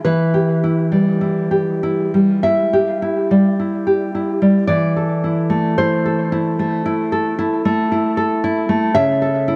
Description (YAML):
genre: romantic piece for solo classical guitar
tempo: 46-58 BPM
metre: 4/4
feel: rubato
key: E minor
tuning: A4 = 440 Hz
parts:
  - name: nylon-string guitar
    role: solo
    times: 0.0-9.6 s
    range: C#3 to E5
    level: -17 LUFS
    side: equal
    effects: dub echo
room: moderate echo chamber reverb, RT60 1.9 s, small room ambience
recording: echo-heavy mix, cassette tape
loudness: -17 LUFS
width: mono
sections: 0.1-9.6 A section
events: none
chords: 0.1 Em; 4.7 Am/E; 9.0 A/C#